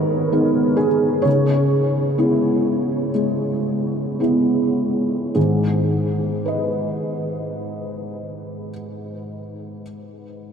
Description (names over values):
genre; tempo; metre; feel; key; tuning
neoclassical minimalist piano; 51-72 BPM; 4/4; rubato; G# minor; A4 = 441 Hz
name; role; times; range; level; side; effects
felt-muted upright piano; solo; 0.0-10.5 s; G#2 to D#5; -18 LUFS; equal; analog chorus, diffuse ambient delay
room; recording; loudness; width
wet huge ambient reverb, RT60 8.3 s; dreamy mix soaked in reverb; -17 LUFS; side -7 dB against mid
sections
0.0-5.4 A section; 5.4-9.8 B section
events
slowing down 0.0-5.4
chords
0.0 G#m; 1.3 C#m7; 5.4 G#m